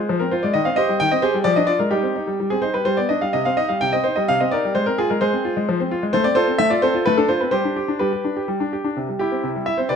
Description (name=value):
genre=classical-period piano sonatina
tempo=129 BPM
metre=3/4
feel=rubato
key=C minor, C major from 6.1 s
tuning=A4 = 440 Hz
part: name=clear concert grand piano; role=solo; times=0.0-10.0 s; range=C3 to G5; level=-18 LUFS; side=equal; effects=none
room=moderate recital hall reverb, RT60 1.4 s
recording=close, detailed microphones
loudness=-18 LUFS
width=side -6 dB against mid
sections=0.0-9.0 A section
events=none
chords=0.1 Fm; 0.5 Cm/Eb; 1.5 Ddim/F; 1.9 Cm/G; 2.9 G; 3.3 Cm; 4.8 Fm/Ab; 5.7 Fm; 6.1 F/A; 7.0 Dm7/A; 7.5 G; 9.0 C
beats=0.09 | 0.55 1.00 1.46 | 1.92 2.39 2.87 | 3.34 3.81 4.28 | 4.75 5.21 5.67 | 6.13 6.58 7.05 | 7.52 7.99 8.48 | 8.97 9.44 9.90